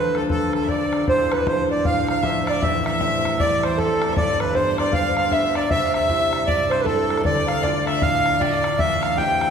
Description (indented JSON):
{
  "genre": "celtic folk, Celtic hornpipe",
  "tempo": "156 BPM",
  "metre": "4/4",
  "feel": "swing 61% on 8ths",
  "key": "D dorian",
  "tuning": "A4 = 440 Hz",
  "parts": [
    { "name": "accordion", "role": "melody", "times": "0.0-9.5 s", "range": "A4 to G5", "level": "-21 LUFS", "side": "right 2 dB", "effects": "none" },
    { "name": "rich fiddle", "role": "second line", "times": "0.0-9.5 s", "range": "A4 to G5", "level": "-28 LUFS", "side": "left 4 dB", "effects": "none" },
    { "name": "concert harp", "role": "accompaniment", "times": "0.0-9.5 s", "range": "D1 to G4", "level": "-24 LUFS", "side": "left 2 dB", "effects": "none" },
    { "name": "bodhran", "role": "percussion", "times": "0.1-9.5 s", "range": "none", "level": "-27 LUFS", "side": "left 1 dB", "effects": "none" },
    { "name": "warm velvety synth lead", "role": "second line", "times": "1.1-9.5 s", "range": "A4 to G5", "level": "-27 LUFS", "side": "right 3 dB", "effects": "none" }
  ],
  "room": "wet church reverb, RT60 3.7 s",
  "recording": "recorded in a church or concert hall",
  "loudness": "-18 LUFS",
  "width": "side -7 dB against mid",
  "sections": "0.0-1.1 A section; 1.1-9.5 B section",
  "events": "none",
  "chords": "0.0 Dm; 2.6 Am7; 4.2 G; 5.7 Cadd9; 7.2 Dm; 8.8 Am7"
}